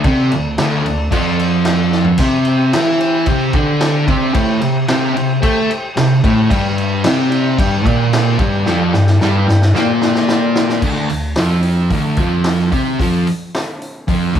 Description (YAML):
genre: garage rock duo or trio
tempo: 111 BPM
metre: 4/4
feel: straight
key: unclear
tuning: A4 = 441 Hz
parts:
  - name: combo organ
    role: sustained chords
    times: 0.0-10.8 s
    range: G4 to A5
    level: -26 LUFS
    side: left 1 dB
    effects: spring reverb
  - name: fuzz guitar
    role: riff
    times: 0.0-14.4 s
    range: D2 to A4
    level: -14 LUFS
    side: equal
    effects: distortion
  - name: vintage drum kit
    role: drums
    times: 0.0-14.4 s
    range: crash cymbal, hi-hat, kick drum, snare drum, splash cymbal, toms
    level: -19 LUFS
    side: equal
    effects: none
room: light reverb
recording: band playing live in one room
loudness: -12 LUFS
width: side -9 dB against mid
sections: 0.0-10.8 A section; 10.8-14.4 B section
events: drum fill 1.9, 8.7-10.8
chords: 0.0 D; 2.2 C5; 6.5 G5; 10.8 Dm7